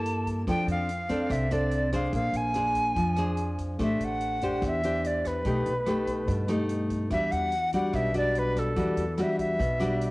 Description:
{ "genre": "bossa nova", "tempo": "145 BPM", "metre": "4/4", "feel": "straight", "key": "E minor", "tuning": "A4 = 440 Hz", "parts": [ { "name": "bright silver concert flute", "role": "melody", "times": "0.0-10.1 s", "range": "A4 to A5", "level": "-29 LUFS", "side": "equal", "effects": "cassette tape" }, { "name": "nylon-string guitar", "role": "accompaniment", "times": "0.0-10.1 s", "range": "B2 to C5", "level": "-28 LUFS", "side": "left 1 dB", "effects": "cassette tape" }, { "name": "upright bass", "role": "bass", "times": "0.0-10.1 s", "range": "A1 to G2", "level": "-32 LUFS", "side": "equal", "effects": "none" }, { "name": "swinging big-band drum kit", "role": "drums", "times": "0.1-10.1 s", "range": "hi-hat, kick drum, rim click", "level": "-39 LUFS", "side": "right 1 dB", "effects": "cassette tape" } ], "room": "moderate spring reverb, RT60 1.9 s, small room ambience", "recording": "home recording on cassette", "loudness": "-25 LUFS", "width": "side -21 dB against mid", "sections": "0.0-10.1 A section", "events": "none", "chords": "0.5 F6; 2.1 A#9; 3.8 Am7; 5.5 Baug7; 7.1 Em9", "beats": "0.06 | 0.47 0.89 1.30 1.72 | 2.13 2.55 2.96 3.38 | 3.79 4.21 4.62 5.04 | 5.45 5.87 6.28 6.70 | 7.11 7.53 7.94 8.36 | 8.77 9.18 9.60 10.01" }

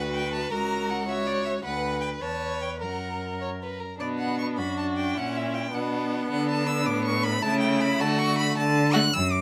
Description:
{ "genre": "quick classical-period movement for string quartet", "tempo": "106 BPM (dotted quarters)", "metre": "6/8", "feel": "rubato", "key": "B minor", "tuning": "A4 = 440 Hz", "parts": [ { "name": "rich violin", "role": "melody", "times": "0.0-9.4 s", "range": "D5 to F#6", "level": "-32 LUFS", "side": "equal", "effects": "none" }, { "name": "rich violin", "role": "second line", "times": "0.0-9.0 s", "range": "D4 to C#5", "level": "-34 LUFS", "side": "equal", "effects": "none" }, { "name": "clear viola", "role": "accompaniment", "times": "0.0-9.0 s", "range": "A3 to B4", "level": "-33 LUFS", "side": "equal", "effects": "none" }, { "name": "rich cello", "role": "bass", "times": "0.0-9.4 s", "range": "C#2 to D3", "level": "-31 LUFS", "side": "equal", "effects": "none" } ], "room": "moderate studio reverb, RT60 0.8 s", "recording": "none", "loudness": "-26 LUFS", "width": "mono", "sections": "0.0-4.0 A section; 4.0-9.4 B section", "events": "none", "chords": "0.0 D; 0.5 F#/C#; 1.6 Bm/D; 2.2 Aadd9/E; 2.8 F#; 4.0 Bm; 5.2 A#dim7; 5.7 Bm; 6.3 D5; 7.4 A/C#; 8.0 D", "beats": "| 0.52 1.08 | 1.64 2.22 | 2.82 3.42 | 4.01 4.59 | 5.17 5.74 | 6.31 6.87 | 7.44 8.00 | 8.57 9.13" }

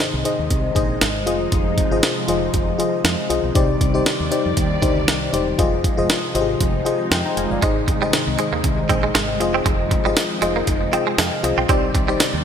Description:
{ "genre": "1980s-style pop", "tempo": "118 BPM", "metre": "4/4", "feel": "swing 55% on 16ths", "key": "unclear", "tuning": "A4 = 439 Hz", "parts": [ { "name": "FM electric piano", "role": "accompaniment", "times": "0.0-12.4 s", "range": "Ab2 to C6", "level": "-21 LUFS", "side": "left 4 dB", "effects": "chorus" }, { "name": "string machine, cellos", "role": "sustained chords", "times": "0.0-12.4 s", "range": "C3 to D5", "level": "-26 LUFS", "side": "right 1 dB", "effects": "phaser, ensemble chorus" }, { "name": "jungle sampler-style drum kit", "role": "drums", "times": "0.0-12.3 s", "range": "hi-hat, kick drum, snare drum, tambourine", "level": "-21 LUFS", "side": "right 1 dB", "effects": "none" }, { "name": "woody fretless electric bass", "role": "bass", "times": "0.1-12.4 s", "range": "E1 to F2", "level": "-26 LUFS", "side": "right 1 dB", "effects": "none" }, { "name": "direct-recorded clean electric guitar", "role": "riff", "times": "7.6-12.2 s", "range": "G3 to C4", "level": "-24 LUFS", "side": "right 8 dB", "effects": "ensemble chorus, ping-pong delay" } ], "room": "moderate lush hall reverb, RT60 1.8 s", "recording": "bright 1980s-style digital production", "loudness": "-17 LUFS", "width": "side -8 dB against mid", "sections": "0.0-12.4 A section", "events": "FM electric piano fill 6.6-7.6, 10.7-11.7", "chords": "0.0 Ab; 1.3 Fm7; 3.6 Cmadd9; 5.6 Fm7; 7.6 Ab; 9.4 Fm7; 11.7 Cmadd9", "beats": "0.00 0.50 1.01 | 1.52 2.03 2.54 3.05 | 3.56 4.06 4.57 5.08 | 5.59 6.10 6.61 7.11 | 7.62 8.13 8.64 9.15 | 9.66 10.16 10.67 11.18 | 11.69 12.20" }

